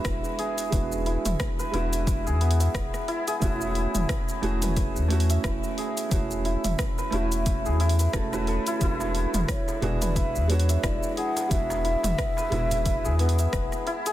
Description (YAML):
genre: organic downtempo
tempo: 89 BPM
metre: 4/4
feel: swing 58% on 16ths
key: E mixolydian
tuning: A4 = 442 Hz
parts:
  - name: felt-muted upright piano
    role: accompaniment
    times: 0.0-14.1 s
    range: G#3 to F#4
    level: -32 LUFS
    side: right 5 dB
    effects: sidechain pumping, digital delay
  - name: santur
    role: arpeggios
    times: 0.0-14.1 s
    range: B3 to E5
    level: -30 LUFS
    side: equal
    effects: digital delay
  - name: warm sub bass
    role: bass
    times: 0.0-13.7 s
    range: E1 to E2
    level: -26 LUFS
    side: left 1 dB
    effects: tube saturation, sidechain pumping
  - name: deep house drum kit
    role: drums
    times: 0.0-14.1 s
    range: hi-hat, rim click, shaker, toms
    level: -33 LUFS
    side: equal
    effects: overdrive, studio reverb
  - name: impact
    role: sound effects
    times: 0.5-0.7 s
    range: none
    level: -57 LUFS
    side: left 1 dB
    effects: none
  - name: electronic kick drum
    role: drums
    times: 0.1-13.7 s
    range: none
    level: -29 LUFS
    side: equal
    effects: overdrive, studio reverb
  - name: darbuka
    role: percussion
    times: 9.0-14.1 s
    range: none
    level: -36 LUFS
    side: right 1 dB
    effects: none
  - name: breathy mellow low ney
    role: melody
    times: 9.5-13.9 s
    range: B4 to F#5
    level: -30 LUFS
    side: equal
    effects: digital delay
room: small room ambience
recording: dense, heavily limited modern master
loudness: -23 LUFS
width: side -14 dB against mid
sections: 0.0-14.1 A section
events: impact 0.0-0.7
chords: 0.0 E7; 3.4 Amaj13/E; 8.8 E7